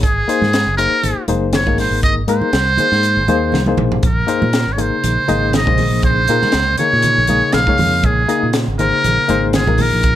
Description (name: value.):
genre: electric jazz fusion.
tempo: 120 BPM.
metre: 4/4.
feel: swing 54% on 16ths.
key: Bb minor.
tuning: A4 = 441 Hz.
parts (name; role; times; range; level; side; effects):
trumpet with metal mute; melody; 0.0-10.2 s; Ab4 to F5; -17 LUFS; right 1 dB; slapback echo.
barky reed electric piano; accompaniment; 0.0-10.2 s; Bb3 to Eb5; -20 LUFS; left 6 dB; overdrive, fast tremolo.
fingered electric bass; bass; 0.0-10.2 s; Gb1 to Bb2; -19 LUFS; right 1 dB; none.
crisp fusion drum kit; drums; 0.0-10.2 s; hi-hat, kick drum, snare drum, toms; -19 LUFS; equal; none.
congas; percussion; 0.4-9.9 s; none; -22 LUFS; right 3 dB; none.
evolving wavetable pad; sustained chords; 4.8-10.2 s; C3 to F4; -26 LUFS; right 2 dB; chorus, built-in reverb, phaser.
room: little or no reverb.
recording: none.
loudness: -13 LUFS.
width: side -12 dB against mid.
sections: 0.0-10.2 A section.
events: drum fill 3.5-4.0.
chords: 0.0 Ab9; 4.0 Bbm11.